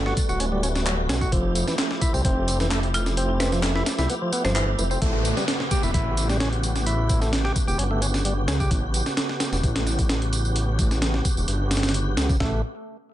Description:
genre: breakbeat, breaks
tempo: 130 BPM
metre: 4/4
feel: straight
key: A mixolydian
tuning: A4 = 440 Hz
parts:
  - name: tonewheel organ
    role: sustained chords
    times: 0.0-12.6 s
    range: C#3 to G4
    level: -30 LUFS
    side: right 1 dB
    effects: chorus vibrato, slow rotary speaker, sidechain pumping
  - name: detuned saw bass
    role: bass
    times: 0.0-12.6 s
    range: D1 to C#2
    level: -24 LUFS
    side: equal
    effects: none
  - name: percussive tonewheel organ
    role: riff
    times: 0.1-8.7, 12.4-12.6 s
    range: E3 to G4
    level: -29 LUFS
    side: equal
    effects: overdrive, digital delay
  - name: breakbeat sampler-style drum kit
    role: drums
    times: 0.1-12.5 s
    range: hi-hat, kick drum, snare drum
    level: -25 LUFS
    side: equal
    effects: none
  - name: electronic tambourine and handclaps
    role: drums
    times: 0.2-12.4 s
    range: none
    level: -32 LUFS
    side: right 1 dB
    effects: none
  - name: buzzing marimba with hard mallets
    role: melody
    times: 2.9-4.6 s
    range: F4 to C5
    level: -33 LUFS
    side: equal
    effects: telephone sound, vintage 12-bit sampler grit, digital delay
  - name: downlifter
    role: sound effects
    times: 5.0-8.7 s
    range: none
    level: -33 LUFS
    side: left 1 dB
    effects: none
room: little or no reverb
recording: nothing above 10.4 kHz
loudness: -21 LUFS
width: side -13 dB against mid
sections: 0.0-5.0 A section; 5.0-12.4 B section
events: drop 0.0-5.0; kick drops out 4.1-5.0; band accent 4.6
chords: 0.0 Gmaj9; 1.3 Fmaj9; 5.0 A13

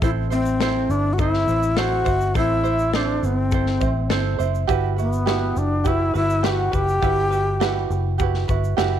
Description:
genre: acoustic pop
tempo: 103 BPM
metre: 4/4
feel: straight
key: unclear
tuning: A4 = 438 Hz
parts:
  - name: breathy bright long shakuhachi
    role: melody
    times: 0.0-7.9 s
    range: B3 to G4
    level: -22 LUFS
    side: left 2 dB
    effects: none
  - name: ukulele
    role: accompaniment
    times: 0.0-9.0 s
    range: C4 to C5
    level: -25 LUFS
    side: right 12 dB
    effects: none
  - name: vintage muted fingered electric bass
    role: bass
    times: 0.0-9.0 s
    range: F#1 to A1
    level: -23 LUFS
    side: left 1 dB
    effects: none
  - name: modern studio drum kit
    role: drums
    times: 0.0-8.9 s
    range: kick drum, shaker, snare drum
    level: -26 LUFS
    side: left 3 dB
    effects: none
room: light reverb, small room ambience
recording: 1960s-style stereo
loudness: -18 LUFS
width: side -10 dB against mid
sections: 0.0-9.0 A section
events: none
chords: 0.0 Am; 4.7 Emadd9

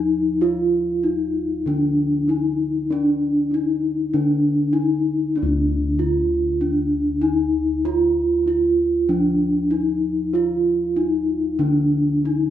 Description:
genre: Javanese gamelan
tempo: 97 BPM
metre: 4/4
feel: straight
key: unclear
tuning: A4 = 440 Hz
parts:
  - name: gamelan-type bronze metallophone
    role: melody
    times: 0.0-12.5 s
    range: D4 to F4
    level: -19 LUFS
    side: equal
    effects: none
  - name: gamelan-type bossed gongs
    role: bass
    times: 0.0-12.5 s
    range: D2 to F4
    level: -24 LUFS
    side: equal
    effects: none
room: wet recital hall reverb, RT60 1.4 s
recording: minimal, uncompressed stereo recording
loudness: -18 LUFS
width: side -11 dB against mid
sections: 0.0-12.5 A section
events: none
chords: none

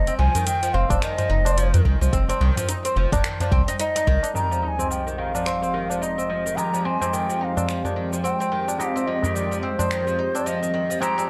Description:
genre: organic downtempo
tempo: 108 BPM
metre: 4/4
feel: swing 59% on 16ths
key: F minor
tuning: A4 = 442 Hz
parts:
  - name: bright bansuri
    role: melody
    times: 0.0-11.3 s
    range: C5 to Bb5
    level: -28 LUFS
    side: equal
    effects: tape echo
  - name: oud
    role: arpeggios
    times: 0.0-11.3 s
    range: Eb3 to Eb4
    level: -30 LUFS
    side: equal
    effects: low-pass filter, tape echo
  - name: warm sub bass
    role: bass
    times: 0.0-4.2 s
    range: F1 to F2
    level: -22 LUFS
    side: equal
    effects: sidechain pumping
  - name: afro-pop drum kit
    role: drums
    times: 0.1-11.3 s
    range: finger snaps, hi-hat, shaker, toms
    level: -33 LUFS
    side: equal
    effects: overdrive
  - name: tabla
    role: percussion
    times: 0.3-11.3 s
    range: none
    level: -32 LUFS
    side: equal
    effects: none
  - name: electronic kick drum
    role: drums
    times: 0.9-4.2 s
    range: none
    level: -26 LUFS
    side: equal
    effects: overdrive
  - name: semi-hollow electric guitar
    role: accompaniment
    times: 4.3-11.3 s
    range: F2 to G4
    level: -33 LUFS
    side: equal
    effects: sidechain pumping, low-pass filter
  - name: sub drop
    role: sound effects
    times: 4.3-6.6 s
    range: none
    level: -34 LUFS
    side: equal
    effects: none
  - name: airy breathy pad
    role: sustained chords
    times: 4.4-11.3 s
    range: F3 to G4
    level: -33 LUFS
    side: equal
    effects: chorus, phaser, sidechain pumping
room: digital ambience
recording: dry, gritty hardware recording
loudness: -23 LUFS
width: mono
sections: 0.0-4.4 A section; 4.4-11.3 B section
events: impact 4.4-6.6; filter sweep on clean electric guitar 4.4-11.3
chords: 0.0 F5; 4.4 Fm7

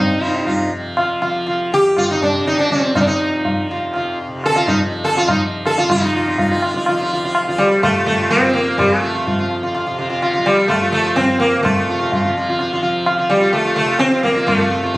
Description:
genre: indian classical, Hindustani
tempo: 124 BPM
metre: 3/4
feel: straight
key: F raga khamaj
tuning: A4 = 439 Hz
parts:
  - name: sitar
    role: melody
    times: 0.0-15.0 s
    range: G3 to A4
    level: -16 LUFS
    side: equal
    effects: none
  - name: tanpura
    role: drone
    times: 0.0-15.0 s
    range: F2 to F3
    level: -25 LUFS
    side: equal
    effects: none
  - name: tabla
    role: percussion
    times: 0.5-15.0 s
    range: none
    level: -21 LUFS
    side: equal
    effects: none
room: light reverb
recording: recorded on a phone in the room, studio reverb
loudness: -14 LUFS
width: side -19 dB against mid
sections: 0.0-5.9 A section; 5.9-15.0 B section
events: speeding up 0.0-15.0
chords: none

